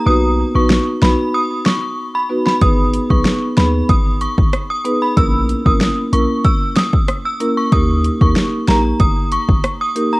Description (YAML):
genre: dancehall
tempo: 94 BPM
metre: 4/4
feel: straight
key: G# minor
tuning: A4 = 440 Hz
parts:
  - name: synth chime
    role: melody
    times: 0.0-10.2 s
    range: A#5 to E6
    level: -19 LUFS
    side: equal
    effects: ensemble chorus, analog delay
  - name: marimba with medium mallets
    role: accompaniment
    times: 0.1-10.1 s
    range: A#3 to B4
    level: -19 LUFS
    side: equal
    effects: cassette tape
  - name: warm 808-style bass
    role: bass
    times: 0.1-9.6 s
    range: G1 to D#2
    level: -18 LUFS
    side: equal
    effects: none
  - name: deep house drum kit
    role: drums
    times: 0.7-10.1 s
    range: hi-hat, kick drum, rim click, snare drum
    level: -15 LUFS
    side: equal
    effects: overdrive, cassette tape
room: light reverb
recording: home recording on cassette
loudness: -13 LUFS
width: side -22 dB against mid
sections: 0.0-10.2 A section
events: break 0.0-2.6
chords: 0.1 B; 2.6 G#m; 5.2 A#dim; 7.7 D#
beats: | 0.06 0.70 1.34 1.98 | 2.62 3.25 3.89 4.53 | 5.17 5.81 6.45 7.08 | 7.72 8.36 9.00 9.64